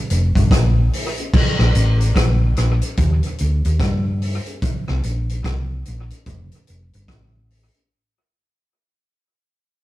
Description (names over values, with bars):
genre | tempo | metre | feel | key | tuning
roots reggae | 73 BPM | 4/4 | swing 61% on 16ths | unclear | A4 = 440 Hz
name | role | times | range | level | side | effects
hollow-body short-scale fingered electric bass | bass | 0.1-7.7 s | F1 to G2 | -18 LUFS | equal | none
vintage drum kit | drums | 0.1-7.9 s | crash cymbal, hi-hat, kick drum, rim click | -20 LUFS | equal | none
room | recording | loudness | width
light reverb | rough rehearsal-room recording, warm saturation | -16 LUFS | side -16 dB against mid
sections
0.0-1.3 A section; 1.3-7.9 B section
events
fade-out 1.3-7.9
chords
none